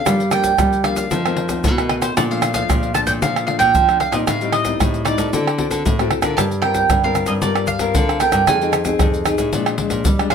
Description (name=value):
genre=samba and choro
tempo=114 BPM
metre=4/4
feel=straight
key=Bb major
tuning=A4 = 438 Hz
part: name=mandolin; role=melody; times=0.0-10.3 s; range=C5 to A5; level=-19 LUFS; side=right 4 dB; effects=none
part: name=nylon-string guitar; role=accompaniment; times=0.0-10.3 s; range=F2 to Bb4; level=-23 LUFS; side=left 5 dB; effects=none
part: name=nylon-string guitar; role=bass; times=0.1-10.3 s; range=F2 to G3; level=-22 LUFS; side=equal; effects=none
part: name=tube shaker, surdo, pandeiro and tamborim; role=percussion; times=0.1-10.3 s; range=none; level=-20 LUFS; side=right 1 dB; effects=none
room=light reverb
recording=none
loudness=-15 LUFS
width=side -7 dB against mid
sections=0.0-2.2 A section; 2.2-10.3 B section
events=none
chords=0.1 Gm7; 1.1 F7; 2.2 Bbmaj7; 4.3 Am7b5; 5.3 D7; 6.4 Gm7; 8.5 Fm7; 9.5 Bb7